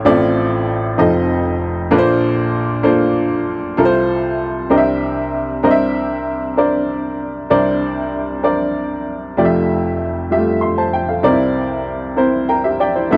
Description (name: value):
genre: gospel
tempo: 64 BPM (dotted quarters)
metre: 6/8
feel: straight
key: unclear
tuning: A4 = 440 Hz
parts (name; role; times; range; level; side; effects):
- warm upright piano; solo; 0.0-13.2 s; F1 to C6; -17 LUFS; equal; none
room: light reverb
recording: dry, close 1970s-style studio recording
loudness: -17 LUFS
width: mono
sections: 0.0-5.6 A section; 5.6-9.4 B section; 9.4-13.2 C section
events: upright piano fill 12.2-13.1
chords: 0.1 Dm9/A; 1.0 F7; 1.9 Bbmaj9; 3.8 F/C; 4.7 C9; 9.4 Fmaj9; 11.2 C9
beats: | 0.06 0.99 | 1.92 2.85 | 3.78 4.71 | 5.64 6.57 | 7.50 8.44 | 9.37 10.30 | 11.24 12.17 | 13.10